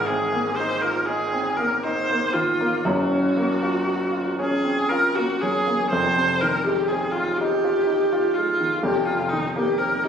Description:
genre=classical, impressionist duo for viola and grand piano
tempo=58-64 BPM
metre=3/4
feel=rubato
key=unclear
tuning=A4 = 444 Hz
part: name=rich viola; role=melody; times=0.0-10.1 s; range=Eb4 to C5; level=-22 LUFS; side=equal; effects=none
part: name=warm grand piano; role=accompaniment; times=0.0-10.1 s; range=F1 to Gb4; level=-24 LUFS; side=right 1 dB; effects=none
room=wet recital hall reverb, RT60 1.5 s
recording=recorded on a phone in the room, studio reverb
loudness=-20 LUFS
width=side -7 dB against mid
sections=0.0-5.9 A section; 5.9-10.1 B section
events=none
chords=0.0 Abadd9; 2.9 Gbmaj7; 5.9 Fm7; 8.8 F9sus4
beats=0.84 1.85 | 2.86 3.89 4.91 | 5.92 6.90 7.88 | 8.84 9.79

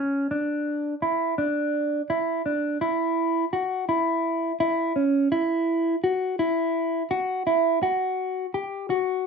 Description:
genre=progressive instrumental, progressive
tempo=168 BPM (eighths)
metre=7/8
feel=straight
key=unclear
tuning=A4 = 442 Hz
part: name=mellow electric guitar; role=solo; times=0.0-9.3 s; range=C#4 to G4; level=-23 LUFS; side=equal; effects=phaser, slapback echo
room=moderate studio ambience, RT60 0.5 s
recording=rough home demo mix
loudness=-23 LUFS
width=side -5 dB against mid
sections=0.3-9.3 A section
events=none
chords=none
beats=| 0.31 0.67 1.02 1.38 1.74 2.10 2.46 | 2.81 3.17 3.53 3.89 4.25 4.61 4.96 | 5.32 5.68 6.04 6.40 6.75 7.11 7.47 | 7.83 8.19 8.54 8.90 9.26

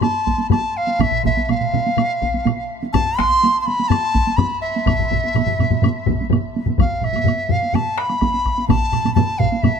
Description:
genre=japanese traditional, taiko drum ensemble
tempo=125 BPM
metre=4/4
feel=straight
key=E miyako bushi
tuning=A4 = 438 Hz
part: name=bright large dizi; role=melody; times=0.0-9.8 s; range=E5 to C6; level=-20 LUFS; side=equal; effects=none
part: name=taiko ensemble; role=percussion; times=0.0-9.8 s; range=none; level=-24 LUFS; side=right 5 dB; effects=none
part: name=taiko ensemble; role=percussion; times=0.0-9.7 s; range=none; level=-21 LUFS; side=left 5 dB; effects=none
part: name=woodblock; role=percussion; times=0.0-9.8 s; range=none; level=-32 LUFS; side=left 10 dB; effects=none
part: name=taiko ensemble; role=percussion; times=0.3-9.5 s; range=none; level=-23 LUFS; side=equal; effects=none
part: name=taiko ensemble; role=percussion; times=1.0-9.7 s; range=none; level=-23 LUFS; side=right 6 dB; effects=none
room=light reverb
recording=none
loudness=-16 LUFS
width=side -6 dB against mid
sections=0.0-6.8 A section; 6.8-9.8 B section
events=speeding up 0.0-9.8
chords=none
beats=0.02 0.51 | 1.00 1.49 1.97 2.46 | 2.94 3.43 3.91 4.39 | 4.88 5.36 5.84 6.32 | 6.79 7.27 7.75 8.22 | 8.70 9.17 9.64

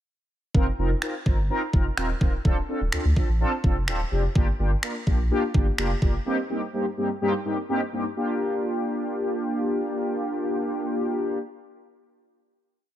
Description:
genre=dance-pop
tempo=126 BPM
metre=4/4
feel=straight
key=G minor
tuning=A4 = 444 Hz
part: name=mellow synth brass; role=accompaniment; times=0.5-11.4 s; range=G2 to Bb4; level=-26 LUFS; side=equal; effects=chorus, sidechain pumping
part: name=warm sub bass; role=bass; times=0.5-6.2 s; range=D1 to D2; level=-25 LUFS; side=equal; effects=sidechain pumping
part: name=pop drum kit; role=drums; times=0.5-6.1 s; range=finger snaps, kick drum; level=-23 LUFS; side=equal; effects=overdrive
room=little or no reverb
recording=none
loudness=-23 LUFS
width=side -12 dB against mid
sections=0.5-8.2 verse; 8.2-12.0 final chord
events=none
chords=0.5 F7sus4; 2.5 Dm7; 4.4 Gm7; 6.3 Cm7/G; 8.2 Gm7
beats=| 0.55 1.02 1.50 1.97 | 2.45 2.93 3.40 3.88 | 4.36 4.83 5.31 5.78 | 6.26 6.74 7.21 7.69 | 8.16 8.64 9.12 9.59 | 10.07 10.54 11.02

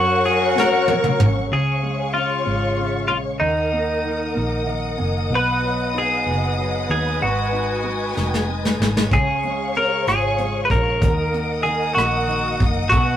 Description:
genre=six-eight pop ballad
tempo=63 BPM (dotted quarters)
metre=6/8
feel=straight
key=Eb minor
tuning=A4 = 439 Hz
part: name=twelve-string electric guitar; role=melody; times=0.0-13.2 s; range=Eb4 to B4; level=-21 LUFS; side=right 1 dB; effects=none
part: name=warm French horn section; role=second line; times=0.0-1.5 s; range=Db4 to Gb4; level=-22 LUFS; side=left 4 dB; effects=none
part: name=warm concert grand piano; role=accompaniment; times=0.0-13.2 s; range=B2 to Ab5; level=-28 LUFS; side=equal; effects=none
part: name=warm studio string section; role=sustained chords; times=0.0-13.2 s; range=Ab4 to Eb6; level=-24 LUFS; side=left 1 dB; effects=none
part: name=vintage muted fingered electric bass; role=bass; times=0.0-13.2 s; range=F1 to Gb2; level=-25 LUFS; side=equal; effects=none
part: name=soft brush drum kit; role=drums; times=0.2-1.3, 8.2-13.1 s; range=hi-hat, kick drum, rim click, snare drum, toms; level=-20 LUFS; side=equal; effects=none
room=wet booth ambience, RT60 0.2 s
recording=rough rehearsal-room recording, warm saturation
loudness=-18 LUFS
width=side -10 dB against mid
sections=0.0-1.5 A section; 1.5-13.2 B section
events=drum fill 0.6-1.5, 8.2-9.1; grand piano fill 4.4-5.3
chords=0.0 Gb; 1.5 Db; 3.4 Ebm; 5.3 B; 7.2 Abm; 9.1 Db; 11.0 Ebm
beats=0.57 | 1.52 2.47 | 3.42 4.37 | 5.32 6.27 | 7.22 8.17 | 9.12 10.07 | 11.02 11.97 | 12.92

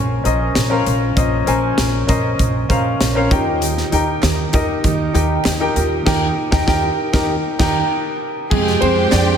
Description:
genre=piano-driven pop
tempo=98 BPM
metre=4/4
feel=straight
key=unclear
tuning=A4 = 439 Hz
part: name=clear baby grand piano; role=accompaniment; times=0.0-9.4 s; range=Bb2 to Ab5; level=-18 LUFS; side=left 1 dB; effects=wide subtle chorus
part: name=upright bass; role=bass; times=0.0-9.4 s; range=Bb1 to F2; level=-21 LUFS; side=equal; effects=none
part: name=modern studio drum kit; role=drums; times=0.3-9.3 s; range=crash cymbal, hi-hat, kick drum, ride cymbal, snare drum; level=-20 LUFS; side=equal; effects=none
part: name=picked steel-string acoustic guitar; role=riff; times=3.6-9.4 s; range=F2 to Bb4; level=-23 LUFS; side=right 8 dB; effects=none
part: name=group handclap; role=percussion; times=4.2-9.3 s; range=none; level=-36 LUFS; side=right 9 dB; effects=none
part: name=warm studio violin section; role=second line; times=8.5-9.4 s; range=G4 to G5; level=-22 LUFS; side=right 2 dB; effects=analog delay
part: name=warm studio string section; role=sustained chords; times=8.5-9.4 s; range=Ab3 to C6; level=-25 LUFS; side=right 1 dB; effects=none
room=moderate lush hall reverb, RT60 2.8 s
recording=dreamy mix soaked in reverb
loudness=-15 LUFS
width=side -8 dB against mid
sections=0.0-8.5 A section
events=band accent 6.1-8.5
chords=0.0 Bbmadd9; 3.3 Eb; 8.5 Fmadd9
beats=0.56 | 1.17 1.78 2.39 3.00 | 3.62 4.23 4.84 5.45 | 6.07 6.68 7.29 7.90 | 8.51 9.13

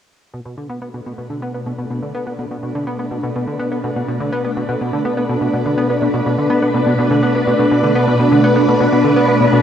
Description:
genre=ambient, sequencer-driven space music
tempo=124 BPM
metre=4/4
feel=straight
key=B minor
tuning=A4 = 439 Hz
part: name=phased string machine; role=sustained chords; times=1.3-9.6 s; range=B2 to B4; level=-16 LUFS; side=equal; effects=ensemble chorus, phaser
part: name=plucky analog bass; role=riff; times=0.3-9.6 s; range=B2 to B3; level=-19 LUFS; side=equal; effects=wide subtle chorus, ping-pong delay
room=wet shimmer reverb, RT60 8.0 s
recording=worn, warbling old tape, cassette tape, warbly pitch drift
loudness=-14 LUFS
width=side -9 dB against mid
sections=0.3-9.6 A section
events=fade-in on analog synth bass 0.3-9.6; fade-in on string machine 0.3-9.6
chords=0.3 Bm7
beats=| 0.33 0.82 1.30 1.79 | 2.27 2.75 3.24 3.72 | 4.21 4.69 5.17 5.66 | 6.14 6.62 7.11 7.59 | 8.08 8.56 9.04 9.53

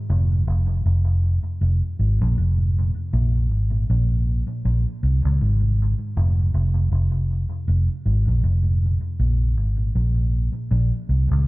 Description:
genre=reggae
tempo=79 BPM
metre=4/4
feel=swing 58% on 16ths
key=Bb minor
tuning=A4 = 440 Hz
part: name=vintage muted fingered electric bass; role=solo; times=0.1-11.4 s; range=F1 to Db2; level=-18 LUFS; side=equal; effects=analog delay
room=light reverb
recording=dark, warm production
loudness=-19 LUFS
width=side -21 dB against mid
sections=0.0-11.5 A section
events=none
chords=none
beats=| 0.08 0.84 1.60 2.36 | 3.12 3.88 4.63 5.39 | 6.15 6.91 7.67 8.43 | 9.19 9.94 10.70

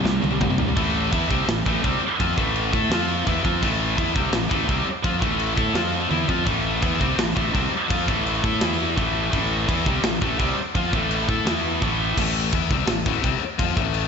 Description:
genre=heavy metal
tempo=168 BPM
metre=4/4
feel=straight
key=A minor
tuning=A4 = 439 Hz
part: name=high-gain distorted guitar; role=riff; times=0.0-14.1 s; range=A2 to A4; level=-24 LUFS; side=left 11 dB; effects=distortion
part: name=scooped high-gain guitar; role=riff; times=0.0-12.2 s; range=A2 to A4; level=-25 LUFS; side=right 10 dB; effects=distortion
part: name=fuzz fingered electric bass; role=bass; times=0.0-14.1 s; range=A1 to C3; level=-27 LUFS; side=equal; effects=overdrive
part: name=tight metal drum kit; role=drums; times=0.1-14.0 s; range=crash cymbal, kick drum, snare drum, toms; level=-25 LUFS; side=equal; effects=none
room=moderate lush hall reverb, RT60 2.2 s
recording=big arena sound, nothing above 7.8 kHz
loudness=-20 LUFS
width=side -6 dB against mid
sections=0.8-12.2 A section; 12.2-14.1 A section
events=drum fill 0.1-0.8, 6.1-6.5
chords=0.0 C5; 0.8 Am; 2.9 F5; 3.3 Am; 5.8 F5; 6.1 Am; 8.6 E5; 9.0 Am; 11.5 E5; 11.8 A5; 12.2 Am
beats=0.05 0.41 | 0.77 1.12 1.48 1.84 | 2.19 2.55 2.91 3.27 | 3.62 3.98 4.33 4.69 | 5.05 5.40 5.76 6.12 | 6.47 6.83 7.18 7.54 | 7.90 8.25 8.61 8.96 | 9.32 9.68 10.03 10.39 | 10.74 11.10 11.46 11.81 | 12.17 12.52 12.88 13.23 | 13.59 13.94

